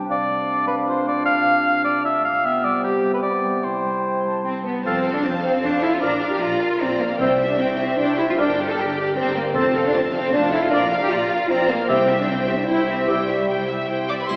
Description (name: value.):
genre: cinematic, heroic adventure film score.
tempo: 152 BPM.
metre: 3/4.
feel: straight.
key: C major.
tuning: A4 = 440 Hz.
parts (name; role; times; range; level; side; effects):
mellow clarinet; second line; 0.0-13.2 s; B3 to C5; -32 LUFS; equal; none.
mellow large flute ensemble; second line; 0.0-14.4 s; A4 to A5; -31 LUFS; equal; none.
dark French horn section; sustained chords; 0.0-14.4 s; C3 to A4; -26 LUFS; equal; none.
concert harp; arpeggios; 0.0-14.4 s; F2 to D6; -34 LUFS; equal; none.
mellow cor anglais; second line; 0.1-14.4 s; G4 to F5; -25 LUFS; equal; none.
warm symphonic cello section; bass; 4.5-14.4 s; C3 to A4; -28 LUFS; equal; none.
warm symphonic violin section; melody; 4.8-14.4 s; D5 to D6; -32 LUFS; equal; none.
warm studio violin section; second line; 4.8-14.4 s; G4 to F5; -33 LUFS; equal; none.
dark symphonic viola section; accompaniment; 4.8-14.4 s; G3 to Bb4; -33 LUFS; equal; none.
rich symphonic double bass section; bass; 4.8-14.4 s; F1 to F2; -35 LUFS; equal; none.
timpani; percussion; 7.2-12.4 s; F2 to C3; -36 LUFS; equal; none.
triangle; percussion; 14.3-14.4 s; none; -40 LUFS; equal; none.
room: wet scoring stage reverb, RT60 1.9 s.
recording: heard from further back in the room, AM radio sound.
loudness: -21 LUFS.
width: mono.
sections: 0.0-4.8 A section; 4.8-14.3 B section.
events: none.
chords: 0.1 Dm/C; 2.4 G/C; 3.6 C; 4.8 F; 6.0 Bb; 7.2 C; 8.4 Gm; 9.5 F; 10.7 Bb; 11.9 C.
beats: | 0.08 0.47 0.86 | 1.26 1.65 2.04 | 2.44 2.83 3.23 | 3.63 4.03 4.44 | 4.84 5.23 5.63 | 6.02 6.42 6.81 | 7.20 7.59 7.98 | 8.37 8.76 9.15 | 9.54 9.93 10.32 | 10.71 11.11 11.50 | 11.89 12.29 12.69 | 13.09 13.48 13.88 | 14.28.